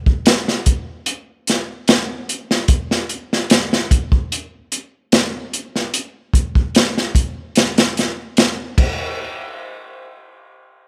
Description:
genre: trip hop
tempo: 74 BPM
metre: 4/4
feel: straight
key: none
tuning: none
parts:
  - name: crunchy breakbeat drum kit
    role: drums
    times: 0.1-8.9 s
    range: crash cymbal, hi-hat, kick drum, snare drum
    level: -17 LUFS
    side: equal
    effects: none
room: little or no reverb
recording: rough home demo mix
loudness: -18 LUFS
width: mono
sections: 0.0-9.2 A section; 9.2-10.9 B section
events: none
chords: none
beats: 0.26 1.07 1.88 | 2.69 3.50 4.31 5.12 | 5.93 6.74 7.55 8.37

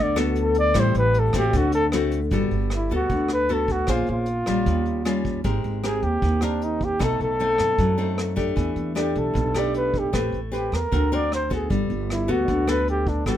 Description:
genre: bossa nova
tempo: 154 BPM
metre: 4/4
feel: straight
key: G major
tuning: A4 = 444 Hz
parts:
  - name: breathy flugelhorn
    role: melody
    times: 0.0-13.4 s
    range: D4 to D5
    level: -24 LUFS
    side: equal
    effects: none
  - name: nylon-string guitar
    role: accompaniment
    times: 0.0-13.4 s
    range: A2 to C5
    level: -25 LUFS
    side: left 2 dB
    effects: none
  - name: upright bass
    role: bass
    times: 0.0-13.4 s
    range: G1 to F#2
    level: -26 LUFS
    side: right 1 dB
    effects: none
  - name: vintage brush drum kit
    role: drums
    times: 0.2-13.4 s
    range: hi-hat, kick drum, rim click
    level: -30 LUFS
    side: right 1 dB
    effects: none
room: little or no reverb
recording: minimal, uncompressed stereo recording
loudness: -20 LUFS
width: side -11 dB against mid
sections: 0.0-2.3 A section; 2.3-13.4 B section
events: flugelhorn solo 0.0-2.3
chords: 0.0 Gmaj9 (rootless); 0.8 Am7; 1.5 D7; 2.3 Gmaj9; 3.9 Bbm9; 4.7 Eb9; 5.4 Abmaj9; 7.0 B7b9; 8.6 Em7; 10.1 Am9; 10.9 D7b13; 11.7 Gmaj9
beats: 0.37 | 0.76 1.15 1.54 1.93 | 2.32 2.71 3.10 3.49 | 3.88 4.27 4.67 5.06 | 5.45 5.84 6.23 6.62 | 7.01 7.40 7.79 8.18 | 8.57 8.96 9.36 9.74 | 10.14 10.53 10.92 11.31 | 11.70 12.09 12.48 12.87 | 13.26

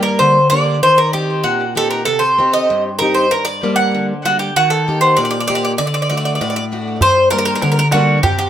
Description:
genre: greek folk, Greek bouzouki band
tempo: 97 BPM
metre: 2/4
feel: straight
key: unclear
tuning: A4 = 440 Hz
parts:
  - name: Greek bouzouki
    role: melody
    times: 0.0-8.5 s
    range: F#4 to F#5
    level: -14 LUFS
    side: right 1 dB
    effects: tape echo
  - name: picked plugged-in acoustic archtop guitar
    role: accompaniment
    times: 0.0-8.5 s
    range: G2 to G4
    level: -18 LUFS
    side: left 1 dB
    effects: none
  - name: darbuka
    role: percussion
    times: 7.0-8.5 s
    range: none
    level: -20 LUFS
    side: right 1 dB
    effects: none
room: moderate studio reverb, RT60 0.6 s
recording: none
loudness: -12 LUFS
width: side -10 dB against mid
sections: 0.0-7.0 A section; 7.0-8.5 B section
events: none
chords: 0.0 Gm; 0.8 Eb6; 2.1 Cm; 3.3 Gm; 4.5 Eb; 5.8 D; 7.0 Gm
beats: 0.19 | 0.81 1.44 | 2.06 2.68 | 3.31 3.93 | 4.54 5.16 | 5.78 6.39 | 7.01 7.62 | 8.23

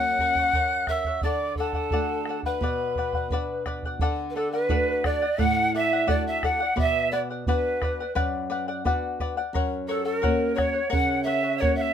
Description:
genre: andean folk, Andean ensemble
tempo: 87 BPM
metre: 4/4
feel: straight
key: unclear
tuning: A4 = 439 Hz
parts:
  - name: polished pan flute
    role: melody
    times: 0.0-11.9 s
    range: A4 to F#5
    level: -26 LUFS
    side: left 2 dB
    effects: none
  - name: breathy quena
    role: second line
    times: 0.0-11.9 s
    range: A4 to F#6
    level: -29 LUFS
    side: right 5 dB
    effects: none
  - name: charango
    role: accompaniment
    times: 0.0-11.9 s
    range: A4 to F#5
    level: -30 LUFS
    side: left 7 dB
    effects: none
  - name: flamenco guitar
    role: accompaniment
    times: 0.0-11.9 s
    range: F#2 to F#4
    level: -31 LUFS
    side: right 2 dB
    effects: none
  - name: bombo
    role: percussion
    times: 0.2-11.8 s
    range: none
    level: -29 LUFS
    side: right 2 dB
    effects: none
room: light reverb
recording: close, detailed microphones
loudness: -23 LUFS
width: side -8 dB against mid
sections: 0.0-4.0 A section; 4.0-11.9 B section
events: none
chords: 0.0 F#; 1.2 D; 2.6 Bm; 4.0 D; 6.8 Bm; 9.5 F#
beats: 0.55 | 1.24 1.93 2.62 3.32 | 4.01 4.70 5.39 6.08 | 6.78 7.47 8.16 8.85 | 9.54 10.24 10.93 11.62

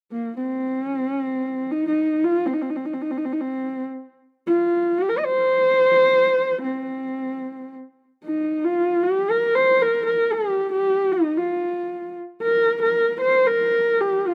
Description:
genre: mongolian traditional, Mongolian folk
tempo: free time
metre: none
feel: none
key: C yu mode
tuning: A4 = 441 Hz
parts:
  - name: dark horsehead fiddle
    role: solo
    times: 0.1-14.3 s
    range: Bb3 to Eb5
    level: -22 LUFS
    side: equal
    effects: none
room: little or no reverb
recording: recorded outdoors, with no room sound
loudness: -21 LUFS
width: mono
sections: 0.0-8.2 A section; 8.2-14.3 B section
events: none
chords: none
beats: free time

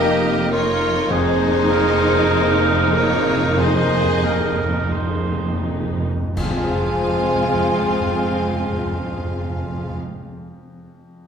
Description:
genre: cinematic, emotional film score for orchestra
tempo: 41-52 BPM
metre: 4/4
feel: rubato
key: F minor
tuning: A4 = 440 Hz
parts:
  - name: warm studio violin section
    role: melody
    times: 0.0-10.0 s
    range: C5 to F5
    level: -27 LUFS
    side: left 3 dB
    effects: none
  - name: mellow clarinet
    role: second line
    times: 0.0-10.0 s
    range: F4 to C5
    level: -25 LUFS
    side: equal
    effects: none
  - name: warm oboe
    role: second line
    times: 0.0-10.0 s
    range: F4 to C5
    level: -26 LUFS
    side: right 2 dB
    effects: none
  - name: warm studio violin section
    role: second line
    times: 0.0-10.0 s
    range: Eb4 to Ab4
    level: -29 LUFS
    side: left 1 dB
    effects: none
  - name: warm grand piano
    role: accompaniment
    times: 0.0-11.3 s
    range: F2 to F5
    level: -28 LUFS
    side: left 2 dB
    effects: none
  - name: warm symphonic viola section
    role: accompaniment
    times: 0.0-10.0 s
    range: Ab3 to Eb4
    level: -25 LUFS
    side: right 1 dB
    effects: none
  - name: dark French horn section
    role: sustained chords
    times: 0.0-10.0 s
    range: Bb3 to Ab4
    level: -26 LUFS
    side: left 2 dB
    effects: none
  - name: rich studio cello section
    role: bass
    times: 0.0-10.0 s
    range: F2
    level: -27 LUFS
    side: right 4 dB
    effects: none
  - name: warm studio double bass section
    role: bass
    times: 0.0-10.0 s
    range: F1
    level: -26 LUFS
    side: right 2 dB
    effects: none
  - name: timpani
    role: percussion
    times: 1.1-10.0 s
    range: F2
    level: -28 LUFS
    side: equal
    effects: none
  - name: mellow hollow small flute group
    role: second line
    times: 6.4-10.0 s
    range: Ab5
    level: -27 LUFS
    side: equal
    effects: none
  - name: clash cymbals and concert bass drum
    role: percussion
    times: 6.4-9.2 s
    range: none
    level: -31 LUFS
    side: right 1 dB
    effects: none
room: wet recital hall reverb, RT60 1.7 s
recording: recorded in a church or concert hall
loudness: -17 LUFS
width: side -7 dB against mid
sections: 0.0-6.4 A section; 6.4-11.3 B section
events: slowing down 0.0-6.4; timpani fill 1.1-6.4; band accent 6.4-7.8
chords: 0.0 Ebadd9/F; 1.1 Abadd9/F; 6.4 Fm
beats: | 1.10 2.32 3.58 4.92 | 6.37 7.82 9.28 10.72

